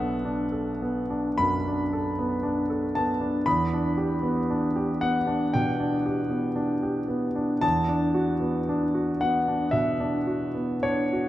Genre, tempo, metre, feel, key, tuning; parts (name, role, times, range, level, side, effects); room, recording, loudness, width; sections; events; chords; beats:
classical, impressionist solo piano; 50-60 BPM; 4/4; rubato; A4 = 441 Hz
clear concert grand piano; solo; 0.0-11.3 s; B1 to B5; -23 LUFS; equal
wet recital hall reverb, RT60 1.5 s; dark, warm production; -23 LUFS; side -14 dB against mid
0.0-11.3 A section
0.0 Bm7; 3.5 Em7; 7.6 E9sus4
0.27 1.40 2.45 | 3.46 4.49 5.53 6.57 | 7.63 8.69 9.75 10.87